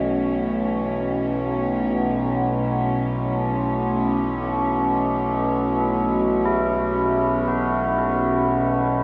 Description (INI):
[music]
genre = dark ambient drone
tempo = free time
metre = none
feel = none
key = unclear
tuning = A4 = 440 Hz
[part]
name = warm chamber cello section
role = sustained chords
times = 0.0-9.0 s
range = B2 to C#4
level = -26 LUFS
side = equal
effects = none
[part]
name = tubular bells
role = arpeggios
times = 0.0-9.0 s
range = E4 to C#5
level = -29 LUFS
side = equal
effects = tape echo
[part]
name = overtone-sweeping drone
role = drone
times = 0.0-9.0 s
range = B1 to B2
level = -25 LUFS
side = equal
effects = chorus, built-in reverb, phaser
[sound]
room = wet huge ambient reverb, RT60 7.5 s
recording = none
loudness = -22 LUFS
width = mono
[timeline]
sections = 0.0-9.0 A section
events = none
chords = 0.0 Bsus2